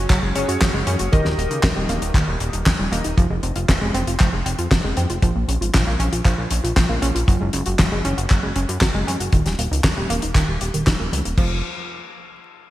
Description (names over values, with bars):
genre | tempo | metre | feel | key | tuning
italo disco | 117 BPM | 4/4 | straight | unclear | A4 = 439 Hz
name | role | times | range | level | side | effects
analog pluck | arpeggios | 0.0-11.6 s | Eb3 to G4 | -25 LUFS | right 2 dB | chorus, cassette tape, digital delay
warm electric grand piano | stabs | 0.0-3.1 s | Eb3 to Eb5 | -26 LUFS | left 1 dB | lush chorus, digital delay
chorused synth bass | bass | 0.0-11.6 s | Eb1 to Gb2 | -23 LUFS | equal | none
damped 70s drum kit | drums | 0.1-11.5 s | crash cymbal, handclaps, hi-hat, snare drum | -23 LUFS | left 1 dB | gated reverb
kick drum | drums | 0.1-11.5 s | none | -18 LUFS | equal | none
room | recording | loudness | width
light reverb | bright 1980s-style digital production, vinyl crackle | -17 LUFS | side -15 dB against mid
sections
0.0-11.4 A section; 11.4-12.7 B section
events
filter sweep on synth arpeggio sound 0.0-11.4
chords
0.0 Gbsus2; 1.1 Eb; 3.2 Fm; 5.2 Bbm; 7.3 Gbsus2; 9.3 Eb; 11.4 N.C.